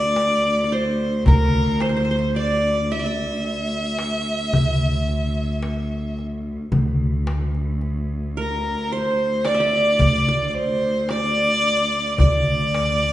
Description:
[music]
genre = Turkish makam ensemble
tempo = 110 BPM (eighths)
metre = 10/8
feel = straight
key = unclear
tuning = A4 = 440 Hz
[part]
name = clear violin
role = melody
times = 0.0-13.1 s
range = Bb4 to E5-30c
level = -22 LUFS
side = equal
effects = none
[part]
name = qanun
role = second line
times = 0.0-13.1 s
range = Bb4 to E5-30c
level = -26 LUFS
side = right 2 dB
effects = none
[part]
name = bright cello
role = drone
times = 0.0-13.1 s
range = D2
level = -26 LUFS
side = left 1 dB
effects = none
[part]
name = darbuka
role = percussion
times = 0.2-13.1 s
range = none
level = -24 LUFS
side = left 1 dB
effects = none
[part]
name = upright bass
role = bass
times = 1.3-13.1 s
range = D2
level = -22 LUFS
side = equal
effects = none
[sound]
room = wet recital hall reverb, RT60 1.4 s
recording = recorded in a church or concert hall, nothing above 11.0 kHz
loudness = -18 LUFS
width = side -14 dB against mid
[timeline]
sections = 0.0-13.1 A section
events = none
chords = none

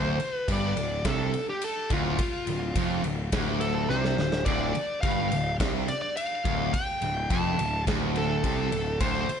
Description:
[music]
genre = hard rock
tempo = 106 BPM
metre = 4/4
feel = straight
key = D minor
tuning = A4 = 440 Hz
[part]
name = smooth overdriven lead guitar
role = melody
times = 0.0-9.4 s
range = F4 to A5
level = -30 LUFS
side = equal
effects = digital delay
[part]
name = overdriven electric guitar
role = riff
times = 0.0-9.3 s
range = D2 to C3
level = -29 LUFS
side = equal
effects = none
[part]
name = fuzz picked electric bass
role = bass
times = 0.0-9.3 s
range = D1 to C2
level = -32 LUFS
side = equal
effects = overdrive
[part]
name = big rock drum kit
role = drums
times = 0.2-9.4 s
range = kick drum, ride cymbal, snare drum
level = -31 LUFS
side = equal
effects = none
[sound]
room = small room ambience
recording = nothing above 11.0 kHz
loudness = -25 LUFS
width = side -7 dB against mid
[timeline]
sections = 0.0-9.4 A section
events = drum fill 3.9-4.5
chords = 0.0 Dm

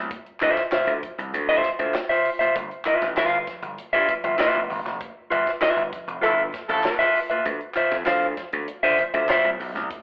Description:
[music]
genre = funk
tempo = 98 BPM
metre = 4/4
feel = straight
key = D dorian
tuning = A4 = 440 Hz
[part]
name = gritty slap bass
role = bass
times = 0.0-9.9 s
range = F1 to D3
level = -27 LUFS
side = equal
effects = overdrive
[part]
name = compact cocktail drum kit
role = drums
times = 0.1-10.0 s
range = hi-hat, kick drum, snare drum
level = -32 LUFS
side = equal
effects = slapback echo
[part]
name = congas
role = percussion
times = 0.1-10.0 s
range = none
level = -46 LUFS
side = right 1 dB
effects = slapback echo
[part]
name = clean electric guitar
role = accompaniment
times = 0.4-9.5 s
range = F4 to F5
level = -20 LUFS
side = equal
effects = slapback echo
[part]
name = group handclap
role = percussion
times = 0.4-9.4 s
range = none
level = -35 LUFS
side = equal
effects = none
[part]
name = warm horn section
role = second line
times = 6.2-7.1 s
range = F3 to A4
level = -25 LUFS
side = equal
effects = slapback echo
[sound]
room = light reverb, studio reverb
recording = live gig heard through the venue's PA, club reverb, telephone sound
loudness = -20 LUFS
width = side -30 dB against mid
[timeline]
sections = 0.0-10.0 A section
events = band accent 5.0-7.5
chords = 0.0 Dm9; 2.6 G13; 7.5 Dm9

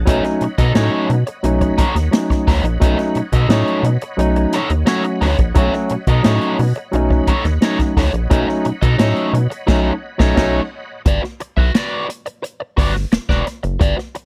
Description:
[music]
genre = funk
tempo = 87 BPM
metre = 4/4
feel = straight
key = B mixolydian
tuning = A4 = 440 Hz
[part]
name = overdriven tonewheel organ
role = sustained chords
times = 0.0-11.0 s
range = C#5 to B5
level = -35 LUFS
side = equal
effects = fast rotary speaker, chorus vibrato
[part]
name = rubbery square bass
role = bass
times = 0.0-13.9 s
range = E1 to B2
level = -20 LUFS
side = equal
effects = none
[part]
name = crunchy overdriven guitar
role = accompaniment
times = 0.1-14.2 s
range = D#4 to E5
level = -24 LUFS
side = equal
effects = wah
[part]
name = barky tine electric piano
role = stabs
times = 0.1-10.6 s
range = F#3 to F#4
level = -21 LUFS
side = equal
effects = overdrive
[part]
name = swinging big-band drum kit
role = drums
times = 0.1-14.3 s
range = crash cymbal, hi-hat, kick drum, snare drum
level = -19 LUFS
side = equal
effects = none
[sound]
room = little or no reverb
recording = dry, close 1970s-style studio recording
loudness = -17 LUFS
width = mono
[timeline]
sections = 0.0-11.1 A section; 11.1-14.3 B section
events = band accent 9.7-11.1; break 11.1-14.3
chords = 0.0 B9; 11.1 Gmaj7

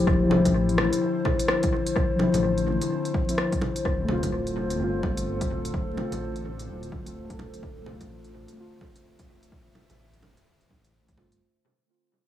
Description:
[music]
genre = future garage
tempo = 127 BPM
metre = 4/4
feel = swing 62% on 16ths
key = D minor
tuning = A4 = 445 Hz
[part]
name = muted felt-like synth keys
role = accompaniment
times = 0.0-11.4 s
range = F3 to A4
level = -29 LUFS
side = left 1 dB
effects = chorus, sidechain pumping, low-pass filter, analog delay
[part]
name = warbly tape-like pad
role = sustained chords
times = 0.0-11.4 s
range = D3 to E5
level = -28 LUFS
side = left 4 dB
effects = chorus, built-in reverb, sidechain pumping
[part]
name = dark detuned saw bass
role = bass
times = 0.0-11.4 s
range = D1 to A1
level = -31 LUFS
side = equal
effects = sidechain pumping
[part]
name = electronic kick drum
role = drums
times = 0.1-11.2 s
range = none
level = -28 LUFS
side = equal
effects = none
[part]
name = deep house drum kit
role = drums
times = 0.3-11.4 s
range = bongos, hi-hat, rim click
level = -30 LUFS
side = equal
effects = analog delay
[sound]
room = moderate spring reverb, RT60 1.1 s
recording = echo-heavy mix, vinyl crackle, small room ambience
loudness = -23 LUFS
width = side -11 dB against mid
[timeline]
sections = 0.0-11.4 A section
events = fade-out 0.0-11.4; filter sweep on synth keys 0.0-11.4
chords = 0.0 Dm7

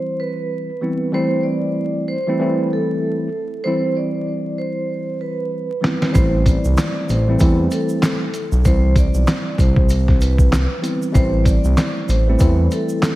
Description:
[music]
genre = hip hop, boom-bap hip-hop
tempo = 96 BPM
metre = 4/4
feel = swing 58% on 16ths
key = A minor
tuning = A4 = 440 Hz
[part]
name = vibraphone with medium mallets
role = melody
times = 0.0-13.2 s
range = A4 to D5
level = -25 LUFS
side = right 1 dB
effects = high-pass filter, low-pass filter, diffuse ambient delay
[part]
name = tine electric piano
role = accompaniment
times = 0.0-13.2 s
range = E3 to E4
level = -21 LUFS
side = equal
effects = medium stereo tremolo, high-pass filter, low-pass filter
[part]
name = lo-fi sampler-style drum kit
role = drums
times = 5.8-13.2 s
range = handclaps, hi-hat, kick drum, snare drum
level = -17 LUFS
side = equal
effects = none
[part]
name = smooth gliding synth bass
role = bass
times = 6.2-12.7 s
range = A1 to E2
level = -17 LUFS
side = equal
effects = none
[part]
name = tube shaker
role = percussion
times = 6.2-13.2 s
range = none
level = -41 LUFS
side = right 4 dB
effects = none
[sound]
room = light reverb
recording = vinyl crackle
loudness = -16 LUFS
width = side -17 dB against mid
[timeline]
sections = 0.0-13.2 A section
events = drum fill 5.5-6.1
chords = 0.0 Cmaj7; 1.1 Am7; 3.6 Cmaj7; 6.1 Am7; 8.6 Cmaj7; 11.1 Am7

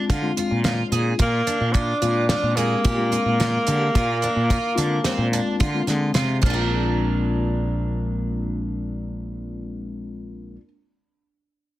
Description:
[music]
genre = progressive instrumental, band music in an uneven meter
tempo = 109 BPM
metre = 5/4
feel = straight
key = Bb mixolydian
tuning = A4 = 440 Hz
[part]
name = mellow tine electric piano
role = accompaniment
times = 0.0-10.6 s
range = Ab3 to Ab4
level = -28 LUFS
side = left 4 dB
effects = phaser, plate reverb
[part]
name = picked twelve-string acoustic guitar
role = arpeggios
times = 0.0-10.7 s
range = Bb3 to Bb4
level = -29 LUFS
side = right 3 dB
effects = plate reverb
[part]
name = fretless electric bass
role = bass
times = 0.1-10.6 s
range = Bb1 to D3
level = -24 LUFS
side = equal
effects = none
[part]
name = damped 70s drum kit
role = drums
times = 0.1-6.6 s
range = crash cymbal, hi-hat, kick drum, snare drum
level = -24 LUFS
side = equal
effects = none
[part]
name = breathy tenor saxophone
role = melody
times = 1.2-6.1 s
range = Bb3 to D4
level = -23 LUFS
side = equal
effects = plate reverb
[sound]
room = moderate small room reverb, RT60 0.6 s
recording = dense, heavily limited modern master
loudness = -19 LUFS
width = side -15 dB against mid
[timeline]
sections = 0.0-6.7 A section; 6.7-9.5 B section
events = none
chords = 0.0 Bb7

